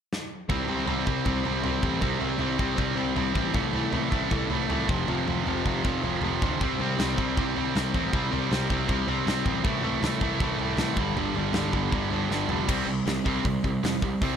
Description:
punk rock; 158 BPM; 4/4; straight; A4 = 442 Hz
big rock drum kit; drums; 0.1-14.3 s; crash cymbal, hi-hat, kick drum, snare drum, toms; -30 LUFS; equal
overdriven semi-hollow guitar; riff; 0.5-14.4 s; F2 to C4; -30 LUFS; left 12 dB
tight distorted guitar; riff; 0.5-14.4 s; F2 to C4; -28 LUFS; right 11 dB; distortion
fuzz picked electric bass; bass; 0.5-14.3 s; F1 to F2; -32 LUFS; equal; overdrive
light reverb; -24 LUFS; side -8 dB against mid
0.5-12.7 A section; 12.7-14.4 B section
drum fill 0.1-0.5, 12.3-12.7
0.5 C5; 3.5 Am/C; 4.9 F5; 6.6 C5; 9.6 Am/C; 11.0 G5; 12.7 C5

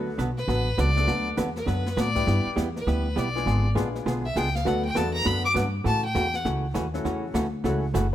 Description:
country, western swing; 201 BPM; 4/4; swing 63% on 8ths; D major; A4 = 439 Hz
clear upright piano; accompaniment; 0.0-8.1 s; G3 to A4; -33 LUFS; left 4 dB
hollow-body jazz guitar; accompaniment; 0.0-8.1 s; C#3 to B4; -29 LUFS; right 2 dB
upright bass; bass; 0.0-8.1 s; F#1 to A2; -27 LUFS; equal
jazz brush drum kit; drums; 0.2-8.1 s; brushed snare drum, crash cymbal, hi-hat, kick drum, snare drum; -34 LUFS; left 1 dB
clear fiddle; melody; 0.4-6.5 s; B4 to D6; -28 LUFS; left 2 dB
light reverb; -23 LUFS; side -12 dB against mid
0.0-8.1 A section
fiddle solo 0.0-8.1; drum fill 1.7
0.0 D6; 2.3 G6; 3.5 G#dim7; 4.7 D6; 5.9 A6

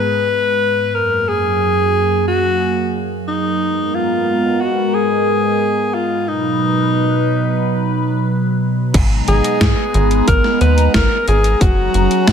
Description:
synthwave; 90 BPM; 4/4; straight; G# dorian; A4 = 439 Hz
clear alto saxophone; melody; 0.0-12.3 s; D#4 to B4; -17 LUFS; equal; ping-pong delay
phased analog pad; sustained chords; 0.0-12.3 s; F#2 to A#5; -18 LUFS; equal; phaser, chorus, sidechain pumping
tight sequencer bass; bass; 8.9-12.3 s; F#1 to G#2; -15 LUFS; equal; sidechain pumping
electronic kick drum; drums; 8.9-12.3 s; -16 LUFS; equal
gated 80s digital drum machine; drums; 8.9-12.3 s; crash cymbal, hi-hat, snare drum; -20 LUFS; equal; gated reverb, gated reverb snare, overdrive, low-pass filter on hats, low-pass filter on cymbals, low-pass filter on snare, low-pass filter on room
light reverb, digital ambience; -13 LUFS; side -7 dB against mid
0.0-8.9 A section; 8.9-12.3 B section
filter sweep on analog synth pad 0.0-8.9
0.0 G#madd9; 0.9 F#add9; 3.6 G#madd9; 6.3 B; 8.9 G#madd9; 11.6 F#add9

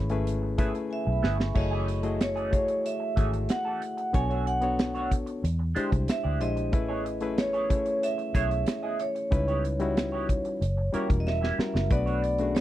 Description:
lush 1970s-style soul; 93 BPM; 4/4; straight; A4 = 440 Hz
barky reed electric piano; accompaniment; 0.0-12.6 s; G3 to E5; -32 LUFS; left 4 dB; overdrive
vintage muted fingered electric bass; bass; 0.0-12.6 s; E1 to E2; -29 LUFS; equal
vibraphone with hard mallets; texture; 0.0-2.2, 11.9-12.6 s; F#5 to C#6; -43 LUFS; moving between left 2 dB and right 8 dB; auto-pan
electric guitar through a small old amp; riff; 0.1-12.6 s; E3 to E5; -36 LUFS; right 4 dB; wah
modern studio drum kit; drums; 0.1-12.6 s; crash cymbal, hi-hat, kick drum, snare drum; -27 LUFS; equal
vibraphone with medium hard mallets; melody; 0.9-12.6 s; C#5 to G#5; -30 LUFS; right 2 dB
little or no reverb; dry, close 1970s-style studio recording; -25 LUFS; side -14 dB against mid
0.0-1.6 A section; 1.6-12.6 B section
drum fill 0.9-1.6, 11.3-11.9
0.0 F#m11 (rootless); 1.6 F#m9; 4.1 Bm9; 5.4 E7alt; 6.7 Amaj9; 9.3 C#m7b5; 10.6 F#7b9; 11.9 Bm9

